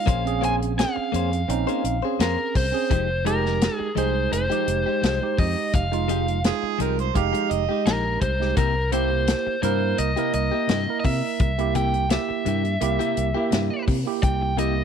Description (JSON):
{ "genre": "straight-eighth soul blues", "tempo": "85 BPM", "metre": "4/4", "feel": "swing 53% on 16ths", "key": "F minor", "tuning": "A4 = 440 Hz", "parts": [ { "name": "overdriven electric guitar", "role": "melody", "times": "0.0-14.8 s", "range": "Bb4 to Ab5", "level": "-26 LUFS", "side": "left 1 dB", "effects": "spring reverb" }, { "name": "tine electric piano", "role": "accompaniment", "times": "0.0-14.8 s", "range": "Ab3 to Bb4", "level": "-27 LUFS", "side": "right 14 dB", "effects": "none" }, { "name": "direct-recorded clean electric guitar", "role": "stabs", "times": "0.1-14.8 s", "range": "C3 to C5", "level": "-30 LUFS", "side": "left 15 dB", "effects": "none" }, { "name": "fingered electric bass", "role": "bass", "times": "0.1-14.8 s", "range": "F1 to C3", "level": "-26 LUFS", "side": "left 1 dB", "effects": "none" }, { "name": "warm soul drum kit", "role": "drums", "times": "0.1-14.8 s", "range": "hi-hat, kick drum, snare drum", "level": "-24 LUFS", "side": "left 2 dB", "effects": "none" }, { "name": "overdriven harmonica", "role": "second line", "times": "6.5-7.9 s", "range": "Ab4 to F5", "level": "-26 LUFS", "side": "right 12 dB", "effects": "none" } ], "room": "small room ambience", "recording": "1960s-style stereo with parts hard left and right", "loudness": "-20 LUFS", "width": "side -7 dB against mid", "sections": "0.0-14.8 A section", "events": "none", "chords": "0.1 Bbm9; 2.9 Fm9; 8.6 C7", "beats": "| 0.07 0.78 1.49 2.19 | 2.90 3.61 4.32 5.03 | 5.74 6.45 7.15 7.86 | 8.57 9.28 9.98 10.69 | 11.40 12.11 12.81 13.52 | 14.23" }